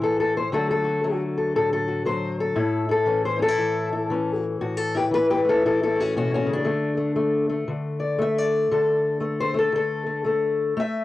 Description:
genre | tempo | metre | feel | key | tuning
acoustic country blues, solo or duo | 117 BPM | 4/4 | swing 63% on 8ths | unclear | A4 = 440 Hz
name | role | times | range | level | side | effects
fingerpicked steel-string acoustic guitar | solo | 0.0-11.0 s | A2 to E5 | -21 LUFS | left 2 dB | cassette tape
room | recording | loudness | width
moderate studio reverb, RT60 0.6 s | home recording on cassette | -21 LUFS | side -15 dB against mid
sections
0.0-11.0 A section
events
steel-string acoustic guitar solo 0.0-11.0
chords
0.0 A; 0.5 D; 2.6 A; 6.7 D5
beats
0.02 | 0.53 1.04 1.55 2.06 | 2.58 3.09 3.60 4.11 | 4.62 5.13 5.64 6.15 | 6.66 7.17 7.69 8.20 | 8.71 9.22 9.73 10.25 | 10.76

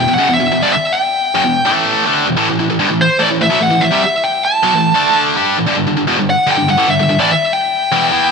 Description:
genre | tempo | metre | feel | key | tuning
rock | 146 BPM | 4/4 | straight | unclear | A4 = 440 Hz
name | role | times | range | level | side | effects
high-gain lead guitar | melody | 0.0-8.3 s | C5 to A5 | -14 LUFS | left 1 dB | distortion
tight distorted guitar | riff | 0.0-8.3 s | E2 to G4 | -14 LUFS | equal | distortion
room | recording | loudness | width
moderate plate reverb, RT60 3.6 s | bright 1980s-style digital production | -11 LUFS | side -5 dB against mid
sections
0.0-8.3 A section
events
none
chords
0.0 Em; 1.7 A5; 2.1 E5; 2.4 A5; 5.0 D5; 5.4 A5; 5.7 G5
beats
0.32 | 0.73 1.14 1.55 1.97 | 2.38 2.79 3.20 3.62 | 4.03 4.44 4.85 5.26 | 5.67 6.08 6.49 6.90 | 7.31 7.72 8.13

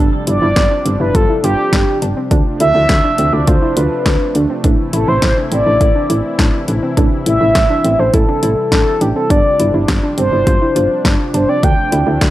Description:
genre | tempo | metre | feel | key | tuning
synth-pop | 103 BPM | 4/4 | straight | unclear | A4 = 440 Hz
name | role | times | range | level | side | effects
brassy analog pad | sustained chords | 0.0-12.3 s | C3 to E4 | -22 LUFS | equal | chorus
soft round pluck | arpeggios | 0.0-12.3 s | C4 to F4 | -20 LUFS | right 1 dB | chorus, analog delay
solid FM bass | bass | 0.0-12.3 s | G1 to D2 | -17 LUFS | equal | none
mellow horn-like synth lead | melody | 0.3-12.2 s | G4 to G5 | -16 LUFS | equal | chorus, analog delay
deep house drum kit | drums | 0.3-12.3 s | hi-hat, kick drum, snare drum | -15 LUFS | equal | none
room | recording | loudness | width
digital ambience | dry, gritty hardware recording | -11 LUFS | side -15 dB against mid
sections
0.0-12.3 A section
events
none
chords
0.0 G7sus4; 2.3 Dm7; 4.6 Am; 9.3 G7sus4; 11.6 Dm7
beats
0.56 1.15 1.73 | 2.31 2.90 3.48 4.06 | 4.64 5.22 5.81 6.39 | 6.97 7.56 8.14 8.72 | 9.30 9.89 10.47 11.05 | 11.63 12.22

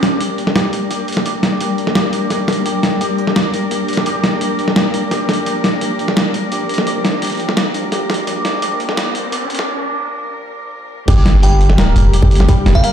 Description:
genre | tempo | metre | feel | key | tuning
half-time drum and bass | 171 BPM | 4/4 | half-time | G minor | A4 = 440 Hz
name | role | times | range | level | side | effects
warm studio cello section | sustained chords | 0.0-12.9 s | D3 to Bb4 | -20 LUFS | left 2 dB | sidechain pumping
santur | arpeggios | 0.0-12.9 s | G3 to D5 | -23 LUFS | right 1 dB | vintage 12-bit sampler grit, low-pass filter, digital delay
boom bap sampler-style drum kit | drums | 0.0-12.9 s | crash cymbal, hi-hat, snare drum | -18 LUFS | equal | none
riser and sub drop | sound effects | 6.5-12.5 s | none | -23 LUFS | right 1 dB | none
long sustained 808-style bass | bass | 11.1-12.7 s | D1 to G1 | -11 LUFS | equal | none
electronic kick drum | drums | 11.1-12.8 s | none | -13 LUFS | equal | none
glassy synth bell | melody | 11.4-12.9 s | F5 to G5 | -22 LUFS | right 2 dB | chorus, digital delay
room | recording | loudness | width
light reverb, digital ambience | played on a big sound system in a bare room, large studio reverb, high-pass filter | -13 LUFS | side -9 dB against mid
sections
0.0-11.1 A section; 11.1-12.9 B section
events
build-up 0.0-11.1; riser 6.5-9.7; break 9.7-11.1; drop 11.1-12.9; impact 11.1-12.5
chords
0.0 Gm; 5.5 Bb; 11.1 Gm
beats
0.20 0.56 0.91 | 1.26 1.61 1.96 2.31 | 2.66 3.01 3.36 3.71 | 4.06 4.42 4.77 5.12 | 5.47 5.82 6.17 6.52 | 6.87 7.22 7.57 7.92 | 8.28 8.63 8.98 9.33 | 9.68 10.03 10.38 10.73 | 11.08 11.43 11.78 12.13 | 12.48 12.84

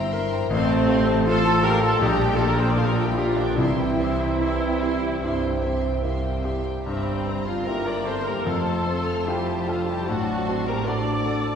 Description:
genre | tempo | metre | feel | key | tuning
classical | 72-82 BPM | 4/4 | rubato | unclear | A4 = 441 Hz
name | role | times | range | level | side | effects
clear concert grand piano | melody | 0.0-11.6 s | A1 to Bb4 | -26 LUFS | left 2 dB | none
rich studio violin section | melody | 0.0-11.6 s | G5 to C6 | -38 LUFS | left 2 dB | none
mellow hollow large flute ensemble | second line | 0.0-11.6 s | C5 to D6 | -32 LUFS | equal | none
rich studio violin section | second line | 0.0-11.6 s | G4 to F6 | -35 LUFS | left 3 dB | none
clear studio viola section | accompaniment | 0.0-11.6 s | C4 to D5 | -26 LUFS | right 1 dB | none
dark French horn section | sustained chords | 0.0-11.6 s | C3 to D4 | -33 LUFS | left 3 dB | none
dark trumpet | stabs | 0.0-11.6 s | G3 to Bb4 | -30 LUFS | right 1 dB | none
rich studio double bass section | bass | 0.0-11.6 s | F1 to C2 | -30 LUFS | right 2 dB | none
warm studio cello section | bass | 0.0-11.6 s | F2 to C3 | -32 LUFS | right 2 dB | none
timpani | percussion | 3.6-4.8 s | C3 | -31 LUFS | equal | none
dark bassoon | accompaniment | 4.4-6.9 s | E3 to C4 | -31 LUFS | right 4 dB | none
room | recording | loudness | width
wet concert hall reverb, RT60 1.9 s | heard from further back in the room | -20 LUFS | side -7 dB against mid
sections
0.0-11.6 A section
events
none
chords
0.0 C7/G; 0.5 F/A; 2.0 Gm7/Bb; 3.6 C; 6.9 C7/G; 8.5 F; 10.1 D7/A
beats
| 0.51 1.27 2.01 2.77 | 3.57 4.40 5.22 6.03 | 6.86 7.67 8.45 9.26 | 10.08 10.86

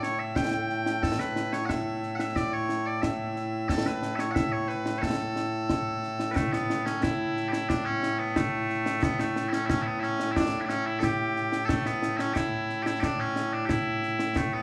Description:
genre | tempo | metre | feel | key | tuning
scottish traditional, Scottish pipe music | 90 BPM | 2/4 | straight | A mixolydian | A4 = 442 Hz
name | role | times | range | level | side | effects
loud bright bagpipes | melody | 0.0-14.6 s | A2 to G5 | -30 LUFS | equal | none
concert snare drum and concert bass drum | drums | 0.0-14.5 s | none | -33 LUFS | equal | none
room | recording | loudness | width
moderate recital hall reverb, RT60 1.5 s | small room ambience | -28 LUFS | mono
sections
0.0-6.4 A section; 6.4-14.6 A section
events
none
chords
none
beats
0.36 | 1.03 1.69 | 2.36 3.03 | 3.69 4.36 | 5.03 5.69 | 6.36 7.03 | 7.69 8.36 | 9.03 9.69 | 10.36 11.03 | 11.69 12.36 | 13.03 13.69 | 14.36

